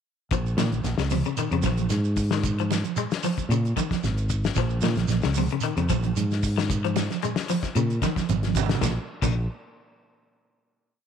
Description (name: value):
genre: afrobeat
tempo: 113 BPM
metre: 4/4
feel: swing 53% on 16ths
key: Bb minor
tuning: A4 = 437 Hz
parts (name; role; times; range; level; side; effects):
- clean electric guitar; arpeggios; 0.3-9.4 s; Bb2 to Ab3; -30 LUFS; left 10 dB; none
- fingered electric bass; bass; 0.3-9.5 s; Ab1 to Bb2; -25 LUFS; equal; none
- warm soul drum kit; drums; 0.3-9.3 s; crash cymbal, hi-hat, kick drum, snare drum; -30 LUFS; left 4 dB; none
- shekere; percussion; 0.3-9.3 s; none; -33 LUFS; right 7 dB; none
- congas; percussion; 0.6-9.3 s; none; -29 LUFS; right 15 dB; none
room: light reverb, studio reverb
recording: 1960s-style stereo with parts hard left and right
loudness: -22 LUFS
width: side -8 dB against mid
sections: 0.3-8.8 groove; 8.8-10.9 final note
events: drum fill 8.3-8.8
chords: 0.3 Bbm11; 8.8 N.C.